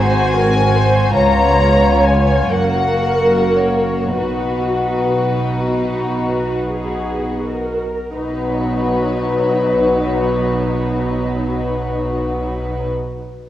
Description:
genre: classical, slow romantic movement for string orchestra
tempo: 27-52 BPM (dotted quarters)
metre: 6/8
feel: rubato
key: B major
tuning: A4 = 440 Hz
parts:
  - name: warm symphonic violin section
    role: melody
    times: 0.0-12.9 s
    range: B4 to A#5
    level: -22 LUFS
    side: left 4 dB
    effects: none
  - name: warm symphonic violin section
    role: second line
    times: 0.0-12.9 s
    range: A#3 to B4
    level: -21 LUFS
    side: left 2 dB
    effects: none
  - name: dark symphonic viola section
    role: accompaniment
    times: 0.0-12.9 s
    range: F#3 to C#5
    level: -20 LUFS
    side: right 1 dB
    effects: none
  - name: warm symphonic cello section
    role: bass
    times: 0.0-12.9 s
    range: C#2 to B2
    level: -22 LUFS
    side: right 2 dB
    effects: none
  - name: warm symphonic double bass section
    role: bass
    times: 0.0-12.9 s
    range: F#1 to C#2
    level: -23 LUFS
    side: right 1 dB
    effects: none
room: wet scoring stage reverb, RT60 1.9 s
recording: worn, warbling old tape, cassette tape, warbly pitch drift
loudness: -14 LUFS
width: side -12 dB against mid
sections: 0.0-8.1 A section; 8.1-12.1 B section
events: slowing down 0.0-8.1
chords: 0.0 G#7; 1.2 C#7; 2.5 F#; 4.2 B

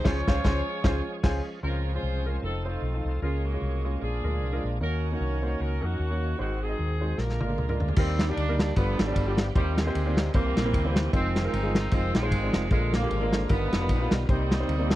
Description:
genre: uptempo gospel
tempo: 152 BPM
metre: 4/4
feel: swing 57% on 8ths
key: Db major, Eb major from 8.0 s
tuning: A4 = 441 Hz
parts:
  - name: clear horn section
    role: melody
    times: 0.0-15.0 s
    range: Bb2 to Db5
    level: -33 LUFS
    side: right 1 dB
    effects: none
  - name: clear concert grand piano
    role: accompaniment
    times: 0.0-15.0 s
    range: G2 to Ab5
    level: -32 LUFS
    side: equal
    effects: none
  - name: bright tonewheel organ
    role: sustained chords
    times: 0.0-15.0 s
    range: D3 to A#4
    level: -36 LUFS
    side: right 3 dB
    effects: slow rotary speaker, overdrive, chorus vibrato
  - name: fingered electric bass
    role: bass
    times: 0.0-15.0 s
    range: F1 to F2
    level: -28 LUFS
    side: equal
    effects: none
  - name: warm soul drum kit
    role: drums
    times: 0.1-1.4, 7.2-15.0 s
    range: crash cymbal, kick drum, ride cymbal, snare drum, toms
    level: -26 LUFS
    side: equal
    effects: none
room: little or no reverb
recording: dry, close 1970s-style studio recording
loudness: -24 LUFS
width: side -15 dB against mid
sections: 0.0-1.6 A section; 1.6-8.0 B section; 8.0-15.0 A section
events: band accent 0.1-1.6; drum fill 7.2-8.0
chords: 0.1 Dbmaj7; 2.4 F7; 3.2 Bbm7/Db; 4.0 Bb7; 4.8 Ebm7; 6.4 Ab7; 7.2 Bb7; 8.0 Ebmaj7; 8.8 G7; 9.6 Cm7/Eb; 10.3 C7; 11.1 Fm7; 12.7 Bb7; 13.5 G7alt; 14.3 Cm7

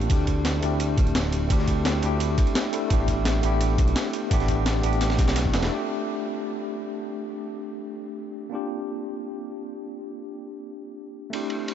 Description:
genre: liquid drum and bass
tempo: 171 BPM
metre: 4/4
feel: straight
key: unclear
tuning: A4 = 440 Hz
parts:
  - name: bright tine electric piano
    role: accompaniment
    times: 0.0-11.7 s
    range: A3 to A4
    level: -28 LUFS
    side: left 1 dB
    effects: medium stereo tremolo, ping-pong delay
  - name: smooth synth bass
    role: bass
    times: 0.0-5.7 s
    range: D1 to D2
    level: -25 LUFS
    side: equal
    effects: none
  - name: breakbeat sampler-style drum kit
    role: drums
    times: 0.0-5.7 s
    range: hi-hat, snare drum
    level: -30 LUFS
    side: equal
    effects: small room ambience
  - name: crunchy breakbeat drum kit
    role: drums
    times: 0.1-5.7, 11.3-11.7 s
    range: ride cymbal, snare drum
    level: -36 LUFS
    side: equal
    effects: high-pass filter on cymbals, small room ambience, high-pass filter on snare, high-pass filter on room
  - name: electronic kick drum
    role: drums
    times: 0.1-5.5 s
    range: none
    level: -23 LUFS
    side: equal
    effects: small room ambience
room: small room ambience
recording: nothing above 7.9 kHz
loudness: -22 LUFS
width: side -10 dB against mid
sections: 0.0-5.7 A section; 5.7-11.7 B section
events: drum fill 5.0-5.7; band accent 5.6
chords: 0.1 D9sus4; 2.9 A9sus4; 5.7 G9sus4; 8.5 C9sus4

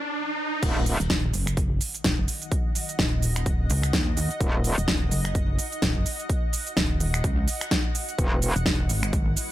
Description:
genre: bass house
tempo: 127 BPM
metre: 4/4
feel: swing 58% on 16ths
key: Eb phrygian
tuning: A4 = 440 Hz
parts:
  - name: riser and impact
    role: sound effects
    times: 0.0-2.5 s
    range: none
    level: -31 LUFS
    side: right 1 dB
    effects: none
  - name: sweeping resonant pad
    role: sustained chords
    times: 0.6-9.5 s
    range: Eb3 to Gb4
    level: -49 LUFS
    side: left 7 dB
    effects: none
  - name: metallic wobble bass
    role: bass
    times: 0.6-1.0, 4.4-4.8, 8.2-8.5 s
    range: Eb1 to E1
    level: -24 LUFS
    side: equal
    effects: chorus, sidechain pumping
  - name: big-room dance drum kit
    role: drums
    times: 0.6-9.5 s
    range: crash cymbal, finger snaps, hi-hat, shaker, snare drum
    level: -27 LUFS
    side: right 1 dB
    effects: none
  - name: electronic kick drum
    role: drums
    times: 0.6-9.2 s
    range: none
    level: -26 LUFS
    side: equal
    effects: none
  - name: pulsing pluck wobble bass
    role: bass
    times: 1.0-9.3 s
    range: Eb1 to Eb2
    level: -26 LUFS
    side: equal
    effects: chorus, overdrive, sidechain pumping
  - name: granular cloud pad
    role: texture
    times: 2.2-9.5 s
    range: E4 to Gb5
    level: -37 LUFS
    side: equal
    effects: built-in reverb, sidechain pumping
room: little or no reverb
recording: none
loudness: -22 LUFS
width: side -14 dB against mid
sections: 0.6-9.5 A section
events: break 0.0-0.6; riser 0.0-0.6; drop 0.6-9.5; impact 0.6-2.5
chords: 0.0 N.C.; 0.6 Ebm; 8.2 Eadd9

